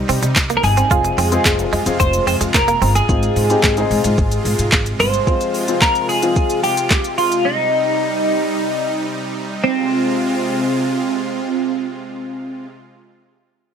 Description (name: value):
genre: dance-pop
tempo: 110 BPM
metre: 4/4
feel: straight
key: Ab major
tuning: A4 = 441 Hz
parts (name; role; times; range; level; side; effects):
- warm baby grand piano; accompaniment; 0.0-7.1 s; F3 to Ab4; -22 LUFS; left 6 dB; sidechain pumping
- supersaw pad; sustained chords; 0.0-12.7 s; C3 to F4; -25 LUFS; right 2 dB; sidechain pumping
- direct-recorded clean electric guitar; riff; 0.1-2.9 s; G3 to F4; -21 LUFS; right 7 dB; wide subtle chorus
- upright bass; bass; 0.1-5.2 s; F1 to C3; -19 LUFS; equal; sidechain pumping
- smooth R&B drum kit; drums; 0.1-7.4 s; handclaps, hi-hat, kick drum, shaker, snare drum; -18 LUFS; equal; overdrive
- egg shaker; percussion; 0.1-3.1 s; none; -34 LUFS; left 12 dB; none
- twelve-string electric guitar; melody; 0.6-12.7 s; C4 to C5; -18 LUFS; right 1 dB; analog chorus
room: light reverb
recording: none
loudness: -15 LUFS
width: side -7 dB against mid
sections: 0.0-9.6 A section; 9.6-13.7 B section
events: none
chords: 0.0 Cm; 0.9 Fm; 3.1 Ab6; 5.3 Fm; 7.5 Cm; 9.6 Ab6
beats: 0.36 | 0.91 1.45 2.00 2.54 | 3.09 3.64 4.18 4.73 | 5.27 5.82 6.36 6.91 | 7.45 8.00 8.54 9.09 | 9.64 10.18 10.73 11.27 | 11.82 12.36